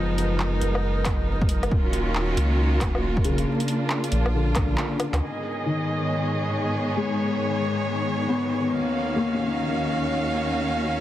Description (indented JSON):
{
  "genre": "future garage",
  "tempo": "137 BPM",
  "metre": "4/4",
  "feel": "swing 63% on 16ths",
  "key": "unclear",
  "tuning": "A4 = 439 Hz",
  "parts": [
    { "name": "dark upright piano", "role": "accompaniment", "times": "0.0-11.0 s", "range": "Db3 to Eb4", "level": "-28 LUFS", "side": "left 3 dB", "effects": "vintage 12-bit sampler grit, sidechain pumping, analog delay" },
    { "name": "clear studio string section", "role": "sustained chords", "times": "0.0-11.0 s", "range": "Eb2 to F5", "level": "-26 LUFS", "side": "right 1 dB", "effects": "sidechain pumping, low-pass filter" },
    { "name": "warm sub bass", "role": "bass", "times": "0.0-5.2 s", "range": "Eb1 to D2", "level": "-24 LUFS", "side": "equal", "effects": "sidechain pumping" },
    { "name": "wind-like tuned noise texture", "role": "texture", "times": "0.0-11.0 s", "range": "Bb4 to Db5", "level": "-34 LUFS", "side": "right 1 dB", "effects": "built-in reverb" },
    { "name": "deep house drum kit", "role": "drums", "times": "0.2-5.2 s", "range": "handclaps, hi-hat, woodblock", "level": "-31 LUFS", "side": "equal", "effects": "overdrive, low-pass filter on hats, low-pass filter on snare, low-pass filter on perc" },
    { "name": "electronic kick drum", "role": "drums", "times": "1.1-4.7 s", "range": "none", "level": "-25 LUFS", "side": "equal", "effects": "overdrive" }
  ],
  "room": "little or no reverb",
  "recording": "dense, heavily limited modern master, vinyl crackle",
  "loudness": "-22 LUFS",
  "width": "side -13 dB against mid",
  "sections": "0.0-5.2 A section; 5.2-11.0 B section",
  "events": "break 4.8-5.2; drum fill 4.8-5.2; band accent 5.1",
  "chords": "0.0 Abm; 1.7 Ebm7; 3.5 Bb; 5.2 Abm; 8.7 Ebm7"
}